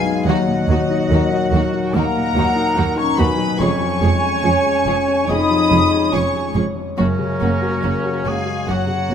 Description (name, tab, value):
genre	cinematic, emotional film score for orchestra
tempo	71 BPM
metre	4/4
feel	rubato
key	Eb minor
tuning	A4 = 440 Hz
part	warm symphonic violin section	melody	0.0-9.1 s	Db5 to Eb6	-24 LUFS	left 3 dB	none
part	flute section	second line	0.0-9.1 s	Bb4 to Cb6	-25 LUFS	equal	none
part	dark baby grand piano	accompaniment	0.0-9.1 s	B1 to Db5	-23 LUFS	equal	none
part	dark French horn section	sustained chords	0.0-9.1 s	Cb3 to Eb4	-23 LUFS	left 3 dB	none
part	concert harp	arpeggios	0.0-9.1 s	F2 to Db6	-26 LUFS	left 8 dB	none
part	mellow cor anglais	second line	0.2-9.1 s	Db4 to Eb5	-26 LUFS	right 4 dB	none
part	dark chamber cello section	bass	0.2-9.1 s	Eb2 to Gb2	-25 LUFS	right 3 dB	none
part	warm symphonic violin section	second line	0.3-9.1 s	Db4 to Ab4	-30 LUFS	left 3 dB	none
part	dark symphonic viola section	accompaniment	0.3-9.1 s	F3 to Bb3	-27 LUFS	right 3 dB	none
part	dark symphonic double bass section	bass	0.3-9.1 s	F1 to Eb2	-24 LUFS	right 4 dB	none
room	moderate scoring stage reverb, RT60 1.8 s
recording	close, detailed microphones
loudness	-15 LUFS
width	side -8 dB against mid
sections	0.0-9.1 A section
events	none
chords	0.3 Ebm; 3.6 Db/F; 7.0 Gb